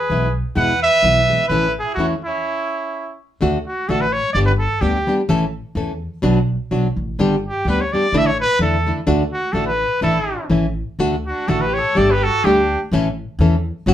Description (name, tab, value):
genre	mexican folk, mariachi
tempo	127 BPM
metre	2/4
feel	swing 54% on 8ths, rubato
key	A major, D major from 3.4 s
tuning	A4 = 440 Hz
part	clear trumpet	melody	0.0-5.2, 7.5-12.8 s	E4 to F#5	-19 LUFS	right 1 dB	none
part	bright trumpet	second line	0.0-3.2, 10.0-12.8 s	C#4 to B4	-27 LUFS	right 4 dB	none
part	nylon-string guitar	accompaniment	0.1-13.9 s	E2 to A4	-18 LUFS	left 1 dB	none
part	upright bass	bass	0.1-13.9 s	F#1 to E2	-22 LUFS	equal	none
room	wet studio reverb, RT60 0.5 s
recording	band playing live in one room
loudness	-16 LUFS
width	side -11 dB against mid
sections	0.0-3.4 A section; 3.4-13.9 B section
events	stop 2.5-3.4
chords	0.0 E; 1.5 A; 3.4 D; 4.4 G; 5.3 A; 6.2 Bm; 7.2 G; 8.1 Asus4; 9.1 D; 10.0 Asus4; 10.5 A; 11.0 D; 12.0 Gsus2; 12.9 A